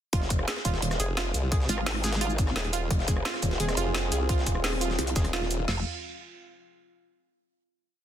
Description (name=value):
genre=dark technical drum and bass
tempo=173 BPM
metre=4/4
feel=straight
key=F minor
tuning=A4 = 440 Hz
part: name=analog pluck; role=arpeggios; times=0.1-5.8 s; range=F4 to Ab4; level=-34 LUFS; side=right 4 dB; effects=chorus, sidechain pumping, ping-pong delay
part: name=growl bass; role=bass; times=0.1-5.8 s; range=Eb1 to C2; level=-29 LUFS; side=equal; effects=chorus, tube saturation
part: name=breakbeat sampler-style drum kit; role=drums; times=0.1-5.6 s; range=hi-hat, snare drum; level=-36 LUFS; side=equal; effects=overdrive, high-pass filter on hats, studio reverb, high-pass filter on snare, high-pass filter on room
part: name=drum and bass drum kit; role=drums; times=0.1-5.8 s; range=crash cymbal, kick drum, snare drum, toms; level=-28 LUFS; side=equal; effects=studio reverb
part: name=drum and bass drum kit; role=drums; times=0.1-5.6 s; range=hi-hat, rim click, shaker, snare drum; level=-32 LUFS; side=equal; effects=overdrive, studio reverb
part: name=formant-sweep wobble bass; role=bass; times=1.0-5.7 s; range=Eb1 to C2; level=-29 LUFS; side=equal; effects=chorus
part: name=dark analog pad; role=sustained chords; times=3.3-5.8 s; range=C4 to Ab4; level=-35 LUFS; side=equal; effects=chorus, sidechain pumping
room=digital ambience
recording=dense, heavily limited modern master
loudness=-25 LUFS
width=side -10 dB against mid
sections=0.1-5.7 drop; 5.7-7.1 final chord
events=drop 0.1-5.7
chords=0.1 Fm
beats=| 0.13 0.48 0.82 1.17 | 1.52 1.86 2.21 2.56 | 2.90 3.25 3.60 3.95 | 4.29 4.64 4.99 5.33 | 5.68